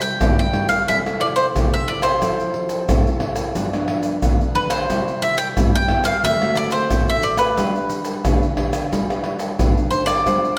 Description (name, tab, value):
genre	samba and choro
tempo	90 BPM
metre	4/4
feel	straight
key	unclear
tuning	A4 = 442 Hz
part	bowl-back mandolin	melody	0.0-10.6 s	B4 to G5	-22 LUFS	equal	none
part	nylon-string guitar	accompaniment	0.0-10.6 s	G2 to C5	-27 LUFS	equal	none
part	egg shaker, pandeiro, surdo and tamborim	percussion	0.0-10.6 s	none	-23 LUFS	equal	none
room	wet concert hall reverb, RT60 1.9 s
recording	recorded in a church or concert hall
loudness	-19 LUFS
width	mono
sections	0.0-10.6 A section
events	none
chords	0.0 Cmaj7; 0.9 Am/C; 2.2 Fmaj7; 3.6 G7; 4.9 Cmaj7; 6.2 D7; 7.6 G